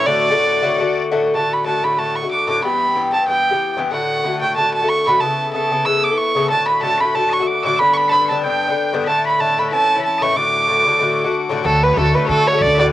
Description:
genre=celtic folk, Celtic reel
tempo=186 BPM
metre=4/4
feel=swing 55% on 8ths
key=D major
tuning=A4 = 439 Hz
part: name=warm fiddle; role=melody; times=0.0-12.9 s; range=A4 to E6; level=-16 LUFS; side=right 2 dB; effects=none
part: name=loud bright bagpipes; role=second line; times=0.0-1.0, 6.5-12.9 s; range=A4 to E6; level=-26 LUFS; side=left 6 dB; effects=cassette tape
part: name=Irish bouzouki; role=accompaniment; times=0.0-12.9 s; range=G2 to A4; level=-20 LUFS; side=left 4 dB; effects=cassette tape
part: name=upright bass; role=bass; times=11.6-12.9 s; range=D2 to D3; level=-18 LUFS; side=right 1 dB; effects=none
room=moderate spring reverb, RT60 1.2 s, small room ambience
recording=home recording on cassette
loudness=-14 LUFS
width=side -14 dB against mid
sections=0.0-1.3 A section; 1.3-11.7 B section; 11.7-12.9 B section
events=none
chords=0.1 D; 2.6 Em; 3.9 D; 5.2 Aadd9; 6.5 D; 7.8 G; 9.1 Asus4; 9.7 A; 10.4 D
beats=| 0.06 0.38 0.70 1.02 | 1.34 1.67 1.99 2.31 | 2.64 2.96 3.28 3.61 | 3.93 4.25 4.58 4.90 | 5.22 5.55 5.87 6.19 | 6.51 6.83 7.16 7.48 | 7.80 8.12 8.44 8.77 | 9.09 9.41 9.73 10.05 | 10.37 10.69 11.01 11.33 | 11.65 11.97 12.29 12.61

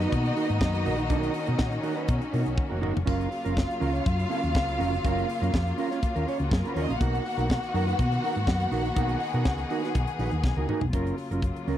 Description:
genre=disco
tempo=122 BPM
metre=4/4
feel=straight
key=F# major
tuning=A4 = 439 Hz
part: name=warm studio violin section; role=second line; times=0.0-10.6 s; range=G#3 to F#5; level=-32 LUFS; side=left 1 dB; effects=none
part: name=mellow electric guitar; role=accompaniment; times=0.0-11.8 s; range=C#4 to C#5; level=-31 LUFS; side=right 6 dB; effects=wide subtle chorus
part: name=rich studio string section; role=sustained chords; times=0.0-11.8 s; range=C#3 to G#4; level=-33 LUFS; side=left 3 dB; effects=none
part: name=hollow-body short-scale fingered electric bass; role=bass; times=0.0-11.8 s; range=E#1 to B2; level=-28 LUFS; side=equal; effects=none
part: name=tight funk drum kit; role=drums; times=0.0-11.8 s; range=hi-hat, kick drum, snare drum, splash cymbal, toms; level=-27 LUFS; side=equal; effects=none
room=little or no reverb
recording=dry, close 1970s-style studio recording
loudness=-24 LUFS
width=side -11 dB against mid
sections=0.0-10.9 A section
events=drum fill 2.6-3.1, 10.4-10.9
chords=0.0 F#maj7; 7.0 Bmaj7; 10.9 F#maj7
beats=0.12 0.61 | 1.10 1.60 2.09 2.58 | 3.07 3.56 4.05 4.55 | 5.04 5.53 6.02 6.51 | 7.00 7.50 7.99 8.48 | 8.97 9.46 9.95 10.44 | 10.93 11.42

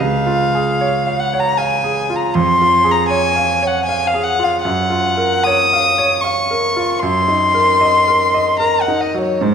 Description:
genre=classical, romantic duo for violin and grand piano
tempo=77 BPM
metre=3/4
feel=rubato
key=Db major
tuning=A4 = 440 Hz
part: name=dark violin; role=melody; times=0.0-9.5 s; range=C5 to Eb6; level=-15 LUFS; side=left 2 dB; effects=none
part: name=bright concert grand piano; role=accompaniment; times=0.0-9.5 s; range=Db2 to F5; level=-17 LUFS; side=right 3 dB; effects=none
room=wet recital hall reverb, RT60 1.5 s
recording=minimal, uncompressed stereo recording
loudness=-13 LUFS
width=side -7 dB against mid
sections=0.0-9.5 A section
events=none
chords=0.0 Db; 2.3 Db/F; 4.6 Gbmaj7; 7.0 Ebm/Gb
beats=| 0.02 0.81 1.59 | 2.35 3.11 3.88 | 4.64 5.46 6.24 | 7.02 7.80 8.60 | 9.42

